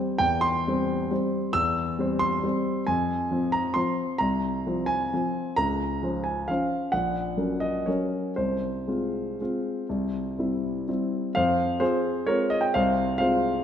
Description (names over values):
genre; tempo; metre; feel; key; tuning
classical, piano waltz; 115-140 BPM; 3/4; rubato; F minor; A4 = 442 Hz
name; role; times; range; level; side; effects
warm concert grand piano; solo; 0.0-13.6 s; Bb1 to E6; -24 LUFS; equal; none
room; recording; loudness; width
moderate scoring stage reverb, RT60 1.6 s; none; -24 LUFS; side -9 dB against mid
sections
0.0-11.4 A section; 11.4-13.6 B section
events
none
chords
0.0 C/E; 2.9 Fm; 5.6 Dbmaj7; 6.9 Gb/Bb; 8.4 Fm/C; 9.9 C; 11.4 Fm